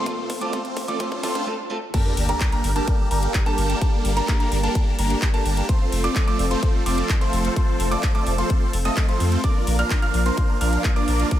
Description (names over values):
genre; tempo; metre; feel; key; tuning
EDM, festival progressive house; 128 BPM; 4/4; straight; G minor; A4 = 440 Hz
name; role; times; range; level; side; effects
lush unison pad; sustained chords; 0.0-11.4 s; F2 to A4; -31 LUFS; left 1 dB; chorus, sidechain pumping
warm concert grand piano; arpeggios; 0.0-11.4 s; A5 to F6; -29 LUFS; right 3 dB; sidechain pumping, tape echo
big supersaw lead; riff; 0.0-11.4 s; A3 to F5; -26 LUFS; equal; phaser, sidechain pumping, tape echo
riser and sub drop; sound effects; 0.0-3.8 s; none; -33 LUFS; equal; none
picked steel-string acoustic guitar; accompaniment; 0.1-1.8 s; A3 to A4; -31 LUFS; right 1 dB; vintage 12-bit sampler grit, sidechain pumping, tape echo
big-room dance drum kit; drums; 0.1-11.4 s; crash cymbal, handclaps, hi-hat; -30 LUFS; left 1 dB; small room ambience
electronic kick drum; drums; 0.1-11.4 s; none; -21 LUFS; equal; high-pass filter on kick, small room ambience
saturated sub bass; bass; 2.2-11.2 s; F1 to F2; -22 LUFS; equal; tube saturation, sidechain pumping
room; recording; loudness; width
light reverb, digital ambience; high-pass filter; -19 LUFS; side -12 dB against mid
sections
0.0-1.9 A section; 1.9-11.4 B section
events
build-up 0.0-1.9; drum fill 0.0-1.5; riser 0.0-1.5; break 1.5-1.9; drop 1.9-11.4; impact 1.9-3.8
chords
0.0 F; 1.9 Gmadd9; 5.7 F; 9.4 Bb